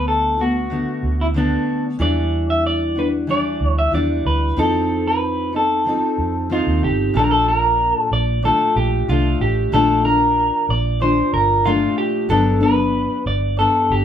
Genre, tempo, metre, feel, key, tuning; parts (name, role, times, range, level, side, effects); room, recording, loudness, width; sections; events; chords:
indie pop, bedroom pop; 93 BPM; 4/4; straight; A4 = 440 Hz
electric guitar through a small old amp; melody; 0.0-14.0 s; D4 to E5; -19 LUFS; equal
fingerpicked steel-string acoustic guitar; accompaniment; 0.0-14.0 s; G2 to A4; -21 LUFS; left 2 dB; warbly pitch drift
vintage muted fingered electric bass; bass; 0.0-14.0 s; G1 to F2; -22 LUFS; right 1 dB
wet small room reverb, RT60 0.5 s; band playing live in one room; -16 LUFS; side -9 dB against mid
0.0-7.1 A section; 7.1-14.0 B section
0.0 D6; 2.0 Em9; 4.6 F7; 7.1 Bbmaj7; 12.3 Gmaj7